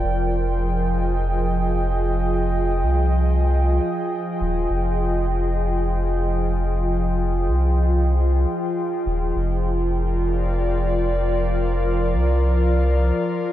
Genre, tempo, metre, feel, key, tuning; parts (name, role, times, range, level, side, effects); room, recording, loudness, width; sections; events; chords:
ambient dub; free time; F dorian; A4 = 440 Hz
warbly tape-like pad; sustained chords; 0.0-13.5 s; F3 to G5; -23 LUFS; equal; chorus, built-in reverb
soft dub sub bass; bass; 0.0-13.1 s; Eb1 to C2; -21 LUFS; equal
moderate cathedral reverb, RT60 5.6 s; dreamy mix soaked in reverb; -19 LUFS; side -13 dB against mid
0.0-13.5 A section
0.0 Fm7; 9.4 Bb/F